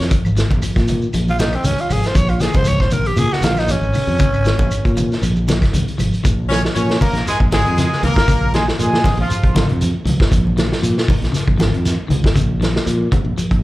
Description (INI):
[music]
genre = afrobeat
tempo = 118 BPM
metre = 4/4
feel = swing 54% on 16ths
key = Bb minor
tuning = A4 = 440 Hz
[part]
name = growling tenor saxophone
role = melody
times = 0.0-5.2 s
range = C4 to Db5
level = -21 LUFS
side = right 1 dB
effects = slapback echo
[part]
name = semi-hollow electric guitar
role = arpeggios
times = 0.0-13.6 s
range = Db3 to F3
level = -24 LUFS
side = left 3 dB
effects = none
[part]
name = modern bright fingered electric bass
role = bass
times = 0.0-13.6 s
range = Ab1 to Bb2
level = -19 LUFS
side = equal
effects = none
[part]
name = vintage drum kit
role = drums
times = 0.0-13.6 s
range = hi-hat, kick drum, snare drum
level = -19 LUFS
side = equal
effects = none
[part]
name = shekere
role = percussion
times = 0.0-13.5 s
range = none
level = -26 LUFS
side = right 1 dB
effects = none
[part]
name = claves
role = percussion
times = 0.2-6.1 s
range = none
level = -39 LUFS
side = equal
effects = none
[part]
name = congas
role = percussion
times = 0.3-13.3 s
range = none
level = -24 LUFS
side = right 1 dB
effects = none
[part]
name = warm horn section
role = melody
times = 6.5-9.7 s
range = F3 to Db5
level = -20 LUFS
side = equal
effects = slapback echo
[part]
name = breathy trumpet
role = second line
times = 6.5-9.7 s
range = F4 to Db5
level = -27 LUFS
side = right 2 dB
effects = slapback echo
[sound]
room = light reverb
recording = live gig heard through the venue's PA, club reverb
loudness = -14 LUFS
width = side -17 dB against mid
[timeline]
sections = 0.0-6.2 A section; 6.2-13.6 B section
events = tenor saxophone solo 0.0-6.2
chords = 0.0 Bbm7